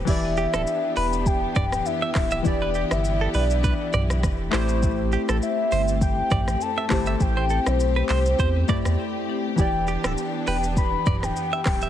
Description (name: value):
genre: afrobeats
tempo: 101 BPM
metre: 4/4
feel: swing 55% on 16ths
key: E minor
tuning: A4 = 440 Hz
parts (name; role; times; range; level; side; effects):
- warm analog keys; accompaniment; 0.0-11.9 s; E3 to D5; -29 LUFS; left 2 dB; chorus
- warm studio string section; sustained chords; 0.0-11.9 s; E3 to G4; -31 LUFS; left 1 dB; sidechain pumping
- warm sub bass; bass; 0.0-11.9 s; D1 to E2; -25 LUFS; equal; none
- soft octave-layered synth lead; melody; 0.1-11.9 s; C5 to B5; -27 LUFS; left 2 dB; chorus, phaser, ping-pong delay
- afro-pop drum kit; drums; 0.1-11.9 s; crash cymbal, handclaps, hi-hat, kick drum, rim click, shaker, toms; -26 LUFS; equal; vintage 12-bit sampler grit
- direct-recorded clean electric guitar; riff; 0.4-11.9 s; G4 to E5; -31 LUFS; right 6 dB; tremolo, ping-pong delay
room: light reverb, digital ambience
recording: heavily compressed radio sound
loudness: -20 LUFS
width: side -11 dB against mid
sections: 0.1-11.9 A section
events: break 9.0-9.6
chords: 0.1 Em7; 4.5 Am7; 9.6 Em7